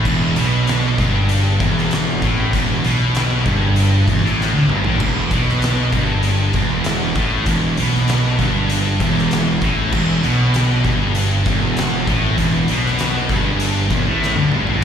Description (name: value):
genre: stoner and doom metal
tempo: 98 BPM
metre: 4/4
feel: straight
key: E minor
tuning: A4 = 439 Hz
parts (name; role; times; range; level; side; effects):
- high-gain distorted guitar; riff; 0.0-14.8 s; E2 to D3; -22 LUFS; left 1 dB; distortion, slapback echo
- thick fuzz guitar; riff; 0.0-14.8 s; E2 to D3; -21 LUFS; left 6 dB; distortion, slapback echo
- thick fuzz guitar; riff; 0.0-14.8 s; E2 to D3; -21 LUFS; right 7 dB; distortion
- fuzz fingered electric bass; bass; 0.0-14.8 s; E1 to D2; -21 LUFS; equal; overdrive, tube saturation
- oversized low-tuned drum kit; drums; 0.1-14.8 s; crash cymbal, hi-hat, kick drum, snare drum, toms; -22 LUFS; equal; none
room: small room reverb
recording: live gig heard through the venue's PA, recital hall reverb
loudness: -14 LUFS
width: side -8 dB against mid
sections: 0.0-14.8 A section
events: drum fill 4.4-5.0, 14.2-14.8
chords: 0.0 Em